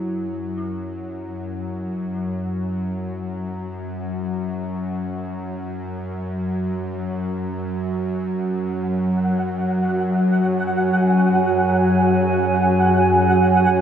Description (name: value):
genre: dark ambient drone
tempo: free time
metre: none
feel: none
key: unclear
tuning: A4 = 440 Hz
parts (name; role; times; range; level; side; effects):
- dark detuned synth bell; arpeggios; 0.0-13.8 s; E4; -35 LUFS; left 2 dB; chorus, diffuse ambient delay
- bowed-like drone; drone; 0.0-13.8 s; F#2 to F#3; -21 LUFS; left 1 dB; built-in reverb
- granular cloud pad; sustained chords; 9.4-13.8 s; F#4 to G#5; -20 LUFS; right 2 dB; built-in reverb
- flickering grainy texture; texture; 8.9-13.8 s; F#5; -24 LUFS; right 2 dB; built-in reverb
room: wet cathedral reverb, RT60 5.5 s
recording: none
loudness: -19 LUFS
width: side -9 dB against mid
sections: 0.0-13.8 A section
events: fade-in on synth drone 0.0-13.8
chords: 0.0 F#sus2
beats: free time